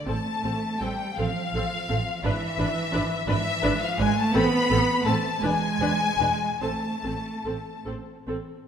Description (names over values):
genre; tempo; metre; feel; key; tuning
classical, slow romantic movement for string orchestra; 47-59 BPM (dotted quarters); 6/8; rubato; A minor; A4 = 441 Hz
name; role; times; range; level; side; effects
clear symphonic violin section; melody; 0.0-7.8 s; E5 to B5; -29 LUFS; left 5 dB; none
warm symphonic violin section; second line; 0.0-7.8 s; E5 to B5; -32 LUFS; left 3 dB; none
clear symphonic cello section; bass; 0.0-7.9 s; E3 to B3; -29 LUFS; right 3 dB; none
rich symphonic viola section; accompaniment; 0.1-8.4 s; C4 to B4; -30 LUFS; equal; none
rich symphonic double bass section; bass; 0.1-8.4 s; E1 to A1; -30 LUFS; right 2 dB; none
room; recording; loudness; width
moderate scoring stage reverb, RT60 1.9 s; none; -23 LUFS; side -8 dB against mid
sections
0.0-8.7 A section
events
none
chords
0.1 Am; 2.2 E7/G#; 4.3 Am; 5.4 E7; 6.6 Am